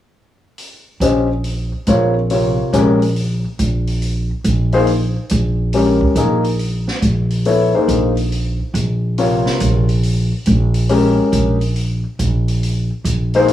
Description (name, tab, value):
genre	modal jazz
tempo	140 BPM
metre	4/4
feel	swing 66% on 8ths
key	Eb mixolydian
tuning	A4 = 440 Hz
part	open jazz drum kit	drums	0.6-13.5 s	hi-hat, kick drum, snare drum	-28 LUFS	right 1 dB	cassette tape
part	warm concert grand piano	accompaniment	1.0-13.5 s	C3 to Eb5	-15 LUFS	left 2 dB	cassette tape
part	upright bass	bass	1.0-13.5 s	Bb1	-16 LUFS	right 1 dB	none
room	light reverb, studio ambience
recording	home recording on cassette, small room ambience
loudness	-14 LUFS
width	side -12 dB against mid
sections	0.6-13.5 A section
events	none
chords	0.6 Eb7sus2 (rootless); 4.0 Bb7(no3); 7.5 Eb7sus2 (rootless); 10.9 Bbm13